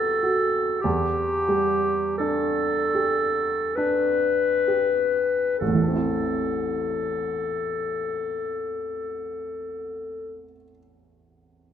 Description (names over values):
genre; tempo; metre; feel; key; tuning
classical, impressionist duo for clarinet and grand piano; 31-50 BPM; 3/4; rubato; A minor; A4 = 441 Hz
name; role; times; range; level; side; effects
mellow clarinet; melody; 0.0-10.4 s; G4 to B4; -24 LUFS; left 2 dB; none
warm baby grand piano; accompaniment; 0.0-11.7 s; A1 to G4; -27 LUFS; right 3 dB; none
room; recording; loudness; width
moderate scoring stage reverb, RT60 1.5 s; none; -22 LUFS; side -8 dB against mid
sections
0.0-5.6 A section; 5.6-10.9 B section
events
slowing down 0.0-5.6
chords
0.0 Emadd9; 0.8 Em7; 5.6 Am